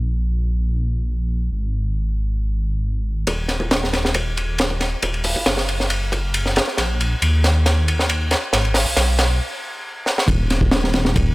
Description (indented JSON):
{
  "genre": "breakbeat, breaks",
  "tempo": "137 BPM",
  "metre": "4/4",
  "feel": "straight",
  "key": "Eb minor",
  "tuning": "A4 = 440 Hz",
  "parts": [
    { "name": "dark detuned saw bass", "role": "bass", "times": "0.0-11.3 s", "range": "Eb1 to Eb2", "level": "-20 LUFS", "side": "equal", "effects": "none" },
    { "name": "crunchy breakbeat drum kit", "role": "drums", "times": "3.3-11.3 s", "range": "hi-hat, kick drum, ride cymbal, snare drum", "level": "-19 LUFS", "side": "equal", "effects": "high-pass filter on kick, high-pass filter on cymbals, high-pass filter on hats, high-pass filter on snare, high-pass filter on room" }
  ],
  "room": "little or no reverb",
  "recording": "none",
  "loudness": "-17 LUFS",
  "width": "side -21 dB against mid",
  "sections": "0.0-3.3 A section; 3.3-10.3 B section; 10.3-11.3 C section",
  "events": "build-up 3.3-10.3; drum fill 6.8-9.4, 10.1; stop 9.4-10.3; drop 10.3-11.3",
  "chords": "none"
}